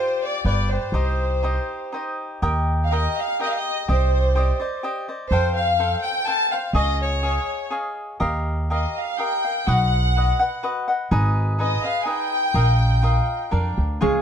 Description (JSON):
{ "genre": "mexican folk, mariachi", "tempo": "124 BPM", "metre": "3/4", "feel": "rubato", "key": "Eb major", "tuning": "A4 = 440 Hz", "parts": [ { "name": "rich chamber violin section", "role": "melody", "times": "0.0-13.8 s", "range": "C5 to A5", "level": "-24 LUFS", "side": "left 1 dB", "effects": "none" }, { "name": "cavaquinho", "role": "accompaniment", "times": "0.0-14.2 s", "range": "D4 to G5", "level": "-26 LUFS", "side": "left 1 dB", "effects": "none" }, { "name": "upright bass", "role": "bass", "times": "0.4-14.2 s", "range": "G1 to F2", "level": "-20 LUFS", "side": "equal", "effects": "none" }, { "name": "concert harp", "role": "arpeggios", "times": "14.0-14.2 s", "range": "Ab3", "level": "-18 LUFS", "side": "right 2 dB", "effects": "none" } ], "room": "light reverb", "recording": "dark, warm production", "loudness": "-19 LUFS", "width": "side -8 dB against mid", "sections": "0.0-2.4 A section; 2.4-14.2 B section", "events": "none", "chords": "0.4 G7; 0.9 Cm; 2.4 Eb; 3.9 Cmadd9; 5.3 Fadd9; 6.7 Dbadd9; 8.2 Ebadd9; 9.7 B; 11.1 Abm; 12.5 Bbsus4; 13.5 Bb", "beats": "0.45 | 0.93 1.42 1.92 | 2.42 2.91 3.39 | 3.88 4.36 4.83 | 5.31 5.78 6.26 | 6.74 7.22 7.71 | 8.21 8.70 9.19 | 9.68 10.16 10.64 | 11.12 11.59 12.07 | 12.55 13.03 13.52 | 14.01" }